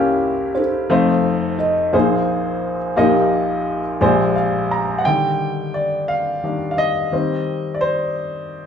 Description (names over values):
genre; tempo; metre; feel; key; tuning
gospel; 58 BPM (dotted quarters); 6/8; straight; Eb major; A4 = 441 Hz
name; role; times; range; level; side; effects
felt-muted upright piano; melody; 0.0-4.3 s; Db4 to Eb5; -22 LUFS; right 2 dB; none
warm upright piano; accompaniment; 0.0-8.7 s; F1 to Bb5; -17 LUFS; left 1 dB; none
room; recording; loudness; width
wet large studio reverb, RT60 1.1 s; band playing live in one room; -16 LUFS; side -8 dB against mid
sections
0.0-5.1 A section; 5.1-8.7 B section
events
upright piano fill 4.0-5.1; upright piano solo 5.1-8.7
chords
0.0 C7b9; 0.9 F7; 1.9 Bb9sus4; 3.0 Eb/Bb; 4.0 Bb13; 5.1 Ebmaj7; 7.1 Eb6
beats
| 0.90 1.94 | 2.98 4.01 | 5.05 6.09 | 7.13 8.16